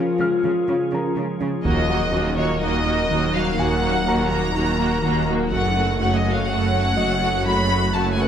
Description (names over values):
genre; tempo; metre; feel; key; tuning
cinematic, hybrid orchestral and electronic film score; 124 BPM; 4/4; straight; Eb minor; A4 = 440 Hz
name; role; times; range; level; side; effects
dark French horn section; sustained chords; 0.0-1.1 s; F4; -22 LUFS; left 3 dB; none
glassy FM pad; sustained chords; 0.0-8.3 s; F3 to Db5; -26 LUFS; left 1 dB; ensemble chorus, built-in reverb
harp-like synth pluck; arpeggios; 0.0-8.3 s; Db3 to Gb4; -29 LUFS; right 4 dB; chorus, tape echo
rich symphonic cello section; bass; 0.0-8.3 s; Eb2 to Db3; -28 LUFS; right 3 dB; none
felt-muted upright piano; texture; 0.2-8.3 s; Gb4 to F6; -32 LUFS; left 1 dB; tape echo
rich symphonic viola section; accompaniment; 1.6-8.3 s; A3 to Gb4; -25 LUFS; right 1 dB; none
dark detuned saw bass; bass; 1.6-8.3 s; Eb1 to Gb1; -28 LUFS; equal; none
rich symphonic double bass section; bass; 1.6-8.3 s; Gb1 to Eb2; -28 LUFS; right 2 dB; none
rich chamber violin section; melody; 1.7-8.3 s; Db5 to Cb6; -24 LUFS; left 2 dB; none
taiko ensemble; drums; 1.7-2.6, 5.5-6.4 s; none; -29 LUFS; equal; none
room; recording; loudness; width
moderate scoring stage reverb, RT60 1.9 s; none; -18 LUFS; side -8 dB against mid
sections
0.0-1.7 A section; 1.7-8.3 B section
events
none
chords
0.0 Db; 1.7 Ebm; 5.5 Gbm